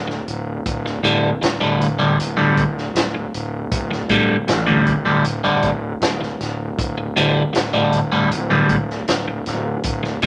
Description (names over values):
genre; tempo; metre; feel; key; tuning
psychedelic rock; 78 BPM; 4/4; straight; unclear; A4 = 441 Hz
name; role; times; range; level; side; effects
fuzz picked electric bass; bass; 0.0-10.3 s; D1 to A1; -27 LUFS; equal; overdrive
electric guitar at the edge of break-up; riff; 0.1-10.3 s; D2 to G3; -19 LUFS; equal; phaser
vintage drum kit; drums; 0.1-10.3 s; hi-hat, kick drum, snare drum; -26 LUFS; equal; none
room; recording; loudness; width
moderate studio reverb, RT60 0.7 s; none; -19 LUFS; mono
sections
0.0-10.3 A section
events
none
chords
0.0 Dsus4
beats
| 0.66 1.43 2.19 2.96 | 3.73 4.49 5.26 6.02 | 6.79 7.55 8.32 9.08 | 9.85